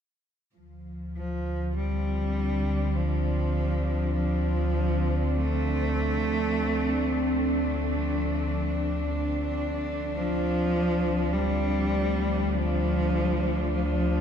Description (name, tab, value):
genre	dark ambient drone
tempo	50 BPM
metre	4/4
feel	straight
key	D minor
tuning	A4 = 440 Hz
part	warm chamber cello section	sustained chords	0.5-14.2 s	F3 to D4	-30 LUFS	equal	none
part	analog drone	drone	0.8-14.2 s	D2 to D3	-29 LUFS	equal	lush chorus
part	rich cello	melody	1.2-14.2 s	F3 to A3	-28 LUFS	equal	diffuse ambient delay
part	gamelan-type bossed gongs	arpeggios	4.6-13.3 s	none	barely audible	none	none
room	wet huge ambient reverb, RT60 8.1 s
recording	in a vast, echoing space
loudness	-24 LUFS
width	side -8 dB against mid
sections	0.6-14.2 A section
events	filter sweep on synth drone 0.6-14.2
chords	0.6 Dm; 10.2 F